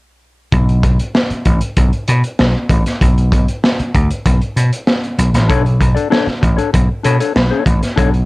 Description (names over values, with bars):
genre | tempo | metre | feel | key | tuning
funk | 97 BPM | 4/4 | straight | B minor | A4 = 440 Hz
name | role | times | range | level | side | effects
vintage slap bass | bass | 0.5-8.2 s | A1 to B2 | -14 LUFS | equal | none
crunchy breakbeat drum kit | drums | 0.5-8.3 s | hi-hat, kick drum, snare drum | -15 LUFS | equal | none
mellow electric guitar | accompaniment | 5.5-8.2 s | D4 to D5 | -18 LUFS | left 6 dB | none
room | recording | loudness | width
light reverb | cassette tape, faint mains hum | -12 LUFS | side -21 dB against mid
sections
0.5-8.3 A section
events
none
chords
0.5 Bm9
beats
| 0.53 1.15 1.77 2.39 | 3.01 3.63 4.25 4.88 | 5.50 6.12 6.74 7.36 | 7.98